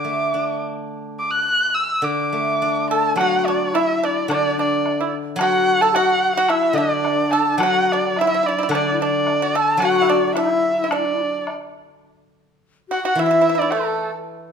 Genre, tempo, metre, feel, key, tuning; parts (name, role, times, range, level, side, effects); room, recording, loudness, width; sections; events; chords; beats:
chinese traditional, Chinese chamber ensemble; 107 BPM; 2/4; rubato; D gong mode; A4 = 440 Hz
dark erhu; melody; 0.0-14.1 s; A4 to F#6; -20 LUFS; right 1 dB
steel-string zither; accompaniment; 0.0-14.5 s; D3 to D4; -25 LUFS; equal
breathy mellow xiao; second line; 2.9-14.1 s; D4 to A4; -23 LUFS; left 6 dB
pipa; second line; 2.9-14.1 s; A3 to A4; -24 LUFS; right 7 dB
woodblock; percussion; 3.2-11.6 s; -30 LUFS; left 2 dB
moderate recital hall reverb, RT60 1.4 s; minimal, uncompressed stereo recording; -17 LUFS; side -6 dB against mid
0.0-3.2 A section; 3.2-12.0 B section; 12.0-14.5 C section
0.34 | 0.90 1.47 | 2.04 2.61 | 3.19 3.75 | 4.31 4.86 | 5.40 5.94 | 6.49 7.04 | 7.61 8.17 | 8.72 9.26 | 9.80 10.35 | 10.91 11.47 | 12.04 12.61 | 13.17 13.72 | 14.27